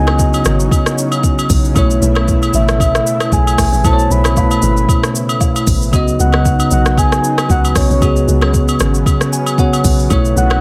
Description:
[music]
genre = amapiano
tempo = 115 BPM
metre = 4/4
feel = swing 55% on 16ths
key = C# minor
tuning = A4 = 440 Hz
[part]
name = soft octave-layered synth lead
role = melody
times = 0.0-10.6 s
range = C#5 to B5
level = -22 LUFS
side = equal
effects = chorus, tape echo
[part]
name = bell-like tine electric piano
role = accompaniment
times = 0.0-10.6 s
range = B2 to G#5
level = -19 LUFS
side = equal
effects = none
[part]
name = lush unison pad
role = sustained chords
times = 0.0-10.6 s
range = C#3 to E4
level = -25 LUFS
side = equal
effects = chorus, sidechain pumping
[part]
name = deep log drum bass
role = bass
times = 0.0-10.6 s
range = G#1 to C#2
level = -18 LUFS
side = equal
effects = none
[part]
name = smooth R&B drum kit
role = drums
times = 0.1-10.6 s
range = hi-hat, kick drum, rim click, shaker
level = -18 LUFS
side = equal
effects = none
[part]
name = agogo bells and woodblock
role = percussion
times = 0.1-10.6 s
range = none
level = -26 LUFS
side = equal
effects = none
[sound]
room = light reverb, digital ambience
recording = none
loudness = -13 LUFS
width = mono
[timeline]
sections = 0.0-10.6 A section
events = tine electric piano fill 9.1-10.1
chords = 0.0 C#9sus4; 1.8 B9sus4; 5.9 C#9sus4; 10.1 B9sus4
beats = 0.19 0.71 1.24 | 1.76 2.28 2.80 3.32 | 3.85 4.37 4.89 5.41 | 5.93 6.45 6.98 7.50 | 8.02 8.54 9.06 9.59 | 10.11

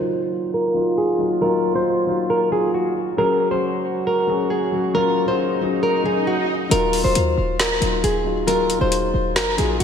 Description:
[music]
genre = hip hop, trap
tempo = 136 BPM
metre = 4/4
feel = half-time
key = Eb dorian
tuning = A4 = 442 Hz
[part]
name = flamenco guitar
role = melody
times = 0.0-9.8 s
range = Gb4 to C5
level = -21 LUFS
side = equal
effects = low-pass filter, ping-pong delay
[part]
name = dark concert grand piano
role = accompaniment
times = 0.0-9.8 s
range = Gb3 to Ab4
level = -24 LUFS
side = left 4 dB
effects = low-pass filter
[part]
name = mellow brass ensemble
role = sustained chords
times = 0.0-6.7 s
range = Db3 to Gb4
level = -25 LUFS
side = right 4 dB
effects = low-pass filter
[part]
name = swell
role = sound effects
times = 5.4-6.7 s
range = none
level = -27 LUFS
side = right 2 dB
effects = none
[part]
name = short 808-style bass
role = bass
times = 6.7-9.8 s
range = Db1 to Eb2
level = -24 LUFS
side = right 1 dB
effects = none
[part]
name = trap drum kit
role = drums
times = 6.7-9.8 s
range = hi-hat, snare drum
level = -23 LUFS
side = left 1 dB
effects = none
[sound]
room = wet lush hall reverb, RT60 1.9 s, studio ambience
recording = dreamy mix soaked in reverb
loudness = -17 LUFS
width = side -7 dB against mid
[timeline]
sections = 0.0-6.7 A section; 6.7-9.8 B section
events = filter sweep 0.0-6.7; swell 5.4-6.7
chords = 0.0 Ebmadd9; 3.2 Gbsus2; 6.7 Ebmadd9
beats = 0.10 0.54 0.98 | 1.42 1.86 2.30 2.74 | 3.18 3.62 4.07 4.51 | 4.95 5.39 5.83 6.27 | 6.71 7.16 7.60 8.04 | 8.48 8.92 9.36 9.80

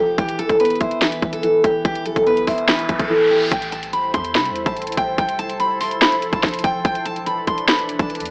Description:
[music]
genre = hip hop, trap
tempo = 144 BPM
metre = 4/4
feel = half-time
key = A minor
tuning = A4 = 440 Hz
[part]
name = picked steel-string acoustic guitar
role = melody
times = 0.0-8.3 s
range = G4 to C6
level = -22 LUFS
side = equal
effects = none
[part]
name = dark concert grand piano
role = accompaniment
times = 0.0-3.5 s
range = E3 to F4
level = -27 LUFS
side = equal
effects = none
[part]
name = clean 808-style bass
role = bass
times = 0.0-8.3 s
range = E1 to C3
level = -41 LUFS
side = equal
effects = none
[part]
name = trap drum kit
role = drums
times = 0.2-8.3 s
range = hi-hat, kick drum, snare drum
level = -22 LUFS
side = equal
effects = overdrive, vintage 12-bit sampler grit
[part]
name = riser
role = sound effects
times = 2.4-3.5 s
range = none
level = -30 LUFS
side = equal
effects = none
[part]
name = glassy FM pad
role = sustained chords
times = 3.9-8.3 s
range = E3 to C5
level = -29 LUFS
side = equal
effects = ensemble chorus, built-in reverb
[sound]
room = light reverb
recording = AM radio sound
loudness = -19 LUFS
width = mono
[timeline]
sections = 0.0-3.5 A section; 3.5-8.3 B section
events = riser 2.4-3.5; silent gap 3.1-3.5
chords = 0.2 E5; 3.5 Am7; 5.2 Fmaj7; 6.8 E7sus4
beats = | 0.18 0.60 1.01 1.43 | 1.85 2.27 2.68 3.10 | 3.52 3.93 4.35 4.76 | 5.18 5.60 6.01 6.43 | 6.85 7.26 7.68 8.10

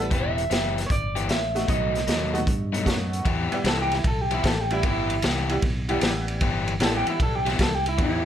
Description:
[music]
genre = electric blues shuffle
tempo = 152 BPM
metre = 4/4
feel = swing 67% on 8ths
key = E harmonic minor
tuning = A4 = 442 Hz
[part]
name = electric guitar through a small old amp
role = melody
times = 0.0-8.2 s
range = E4 to E5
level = -27 LUFS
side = right 1 dB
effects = slapback echo
[part]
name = tack piano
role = accompaniment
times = 0.0-7.4 s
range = E3 to A4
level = -30 LUFS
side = right 2 dB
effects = none
[part]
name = fingered electric bass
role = bass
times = 0.0-8.2 s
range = E1 to G2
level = -29 LUFS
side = equal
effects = none
[part]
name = overdriven semi-hollow guitar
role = riff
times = 0.1-8.2 s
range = B2 to G4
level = -29 LUFS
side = left 5 dB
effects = none
[part]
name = raw garage drum kit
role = drums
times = 0.1-8.1 s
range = hi-hat, kick drum, ride cymbal, snare drum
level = -26 LUFS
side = equal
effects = none
[sound]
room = light reverb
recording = none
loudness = -22 LUFS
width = side -10 dB against mid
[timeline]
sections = 0.0-3.3 A section; 3.3-8.2 B section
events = clean electric guitar solo 3.3-8.2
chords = 0.1 Em; 1.7 B7; 3.3 Em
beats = | 0.11 0.50 0.90 1.29 | 1.69 2.08 2.47 2.87 | 3.26 3.65 4.05 4.44 | 4.84 5.23 5.62 6.02 | 6.41 6.81 7.20 7.59 | 7.99

